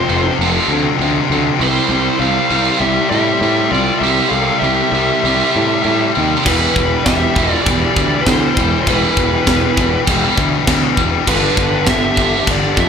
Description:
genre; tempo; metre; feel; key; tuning
heavy metal; 99 BPM; 4/4; straight; E phrygian; A4 = 438 Hz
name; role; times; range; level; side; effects
high-gain lead guitar; melody; 0.0-12.9 s; B4 to F5; -20 LUFS; right 3 dB; distortion, slapback echo, digital delay
dark smooth lead guitar; second line; 0.0-12.9 s; D4 to C5; -24 LUFS; right 3 dB; overdrive, slapback echo
heavy high-gain guitar; riff; 0.0-12.9 s; F2 to G3; -18 LUFS; left 14 dB; distortion, slapback echo
heavy high-gain guitar; riff; 0.0-12.9 s; E2 to C4; -20 LUFS; right 13 dB; distortion, slapback echo
fuzz picked electric bass; bass; 0.1-12.9 s; E1 to A2; -18 LUFS; equal; overdrive
tight metal drum kit; drums; 6.5-12.9 s; china cymbal, crash cymbal, kick drum, snare drum; -17 LUFS; equal; none
room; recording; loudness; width
little or no reverb; live gig heard through the venue's PA, club reverb; -12 LUFS; side -7 dB against mid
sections
0.0-12.9 A section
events
none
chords
0.0 F5; 1.6 C; 6.4 Em; 11.3 G

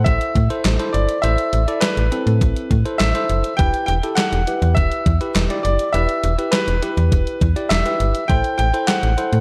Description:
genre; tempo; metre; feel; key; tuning
synth-pop; 102 BPM; 4/4; straight; E minor; A4 = 440 Hz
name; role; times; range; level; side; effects
bright grand piano; melody; 0.0-9.4 s; B4 to G5; -24 LUFS; equal; tape echo
bell-like tine electric piano; accompaniment; 0.0-9.4 s; C4 to D5; -27 LUFS; equal; none
slap-like FM bass; bass; 0.0-9.4 s; E1 to A2; -20 LUFS; equal; none
gated 80s digital drum machine; drums; 0.1-9.4 s; handclaps, hi-hat, kick drum, snare drum; -23 LUFS; equal; gated reverb, gated reverb snare
room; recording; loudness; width
light reverb; dark, warm production; -18 LUFS; mono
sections
0.0-9.4 A section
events
none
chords
0.0 Am; 3.6 Em; 8.3 Am

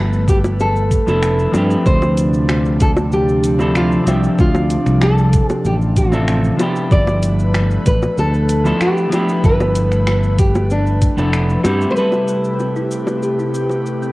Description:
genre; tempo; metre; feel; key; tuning
sunset chillout; 95 BPM; 4/4; straight; D dorian; A4 = 440 Hz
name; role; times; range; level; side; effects
semi-hollow electric guitar; accompaniment; 0.0-14.1 s; F3 to E5; -21 LUFS; equal; auto-pan, cassette tape
airy breathy pad; sustained chords; 0.0-14.1 s; C3 to B4; -22 LUFS; equal; chorus, cassette tape
fingered electric bass; bass; 0.0-11.8 s; F1 to G2; -17 LUFS; equal; none
smooth R&B drum kit; drums; 0.1-14.1 s; cabasa, finger snaps, hi-hat; -28 LUFS; equal; none
nylon-string guitar; melody; 0.3-14.1 s; D4 to D5; -20 LUFS; equal; cassette tape, tape echo
electronic kick drum; drums; 0.3-11.1 s; none; -15 LUFS; equal; none
bongos; percussion; 0.4-13.8 s; none; -24 LUFS; equal; none
kalimba; arpeggios; 12.3-14.1 s; B3 to G4; -24 LUFS; left 1 dB; low-pass filter, cassette tape, analog delay
room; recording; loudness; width
moderate spring reverb, RT60 1.5 s, digital ambience; home recording on cassette; -13 LUFS; side -20 dB against mid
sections
0.0-12.0 A section; 12.0-14.1 B section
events
filter sweep on kalimba 12.0-14.1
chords
0.0 G13; 1.9 Dm7; 6.9 G13; 12.0 Am9

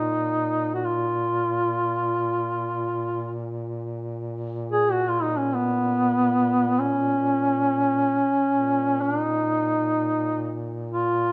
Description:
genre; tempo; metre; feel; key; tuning
caucasian folk, Caucasian lament; free time; none; none; Bb phrygian; A4 = 440 Hz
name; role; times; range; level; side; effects
warm duduk; melody; 0.0-11.3 s; Cb4 to Ab4; -24 LUFS; equal; none
mellow duduk; drone; 0.0-11.3 s; Bb2; -33 LUFS; equal; none
room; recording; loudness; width
moderate concert hall reverb, RT60 1.9 s; none; -24 LUFS; mono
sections
0.0-11.3 A section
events
none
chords
none

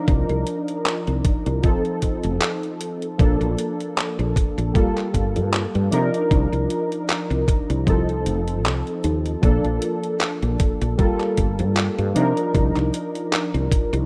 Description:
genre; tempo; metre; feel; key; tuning
vaporwave; 77 BPM; 4/4; swing 55% on 16ths; unclear; A4 = 439 Hz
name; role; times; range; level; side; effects
warbly lo-fi synth keys; accompaniment; 0.0-14.1 s; F3 to Bb4; -26 LUFS; equal; ensemble chorus, analog delay
woody fretless electric bass; bass; 0.1-14.1 s; F1 to C3; -24 LUFS; equal; subtle chorus
detuned 8-bit digital drum machine; drums; 0.1-14.1 s; handclaps, hi-hat; -29 LUFS; equal; small room ambience
electronic kick drum; drums; 0.1-13.9 s; none; -22 LUFS; equal; small room ambience
room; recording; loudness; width
light reverb, digital ambience; rough home demo mix; -22 LUFS; mono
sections
0.0-14.1 A section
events
none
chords
0.0 Cm11; 1.6 F7; 3.2 Bbmaj7; 4.8 Gm9; 5.9 Cm11; 7.9 F7; 9.4 Bbmaj7; 11.0 Gm9; 12.2 Cm11

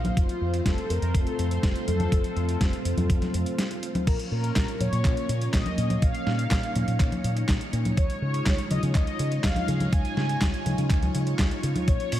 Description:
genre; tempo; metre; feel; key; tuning
italo disco; 123 BPM; 4/4; straight; Bb minor from 4.1 s; A4 = 438 Hz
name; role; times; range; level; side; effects
mellow synth brass; melody; 0.0-12.2 s; F4 to Ab5; -33 LUFS; left 2 dB; chorus, shimmer reverb
string machine, full ensemble; sustained chords; 0.0-12.2 s; Ab3 to Db5; -32 LUFS; equal; ensemble chorus, shimmer reverb
fingered electric bass with an envelope filter; bass; 0.0-12.2 s; F1 to Db3; -28 LUFS; equal; none
clean 12-bit digital drum machine; drums; 0.0-12.2 s; congas, crash cymbal, handclaps, hi-hat, snare drum; -30 LUFS; equal; overdrive
electronic kick drum; drums; 0.2-12.0 s; none; -24 LUFS; equal; overdrive
room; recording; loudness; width
digital ambience; vinyl crackle; -23 LUFS; side -12 dB against mid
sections
0.0-4.1 A section; 4.1-12.2 B section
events
break 3.6-4.1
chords
0.2 F; 4.1 Bbm; 8.0 Dbadd9

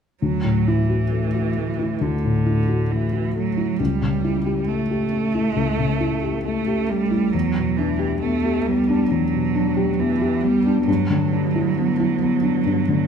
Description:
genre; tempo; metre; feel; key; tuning
neoclassical piano and strings; 68 BPM; 4/4; rubato; D major; A4 = 440 Hz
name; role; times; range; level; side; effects
rich cello; second line; 0.2-13.1 s; D3 to A3; -24 LUFS; right 9 dB; none
felt-muted upright piano; accompaniment; 0.2-13.1 s; C#2 to G4; -20 LUFS; left 2 dB; none
room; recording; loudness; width
wet recital hall reverb, RT60 1.7 s; minimal, uncompressed stereo recording; -18 LUFS; side -7 dB against mid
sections
0.2-13.1 A section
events
none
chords
0.2 Dadd9; 3.8 A7/C#; 7.3 Em7; 10.9 G6

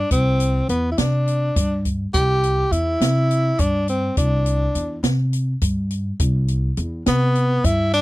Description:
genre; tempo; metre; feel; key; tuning
progressive instrumental, band music in an uneven meter; 207 BPM (eighths); 7/8; straight; C major; A4 = 440 Hz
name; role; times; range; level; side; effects
breathy tenor saxophone; melody; 0.0-8.0 s; B3 to G4; -21 LUFS; equal; none
upright bass; bass; 0.1-8.0 s; C2 to C3; -20 LUFS; equal; none
open jazz drum kit; drums; 0.1-8.0 s; hi-hat, kick drum, snare drum; -23 LUFS; equal; none
room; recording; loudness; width
little or no reverb; dry, close 1970s-style studio recording; -18 LUFS; side -18 dB against mid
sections
0.0-8.0 A section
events
none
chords
0.0 Cadd9

